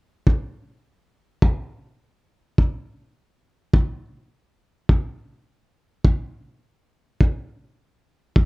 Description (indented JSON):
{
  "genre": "pop",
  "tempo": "104 BPM",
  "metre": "4/4",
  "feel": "swing 60% on 16ths",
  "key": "none",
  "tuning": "none",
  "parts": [
    { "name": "kick drum", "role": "drums", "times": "0.3-8.5 s", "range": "none", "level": "-17 LUFS", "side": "equal", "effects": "none" }
  ],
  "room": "little or no reverb",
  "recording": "rough home demo mix",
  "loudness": "-20 LUFS",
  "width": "side -27 dB against mid",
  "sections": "0.3-8.5 A section",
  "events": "none",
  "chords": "none",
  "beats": "| 0.27 0.85 1.43 2.00 | 2.58 3.16 3.74 4.32 | 4.89 5.47 6.05 6.63 | 7.21 7.78 8.36"
}